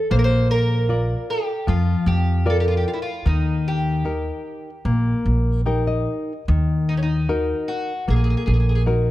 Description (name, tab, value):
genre	fado-style ballad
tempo	76 BPM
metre	4/4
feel	rubato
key	unclear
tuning	A4 = 440 Hz
part	fingerpicked twelve-string acoustic guitar	melody	0.0-8.8 s	C#4 to B#4	-26 LUFS	right 1 dB	none
part	nylon-string guitar	accompaniment	0.1-9.1 s	D#3 to G5	-23 LUFS	left 3 dB	none
part	upright bass	bass	0.1-9.1 s	A#1 to E#2	-20 LUFS	right 1 dB	none
room	little or no reverb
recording	close, detailed microphones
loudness	-18 LUFS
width	side -15 dB against mid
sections	0.0-9.1 A section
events	nylon-string guitar fill 5.3-6.5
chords	0.1 A#; 3.3 D#; 6.5 D#m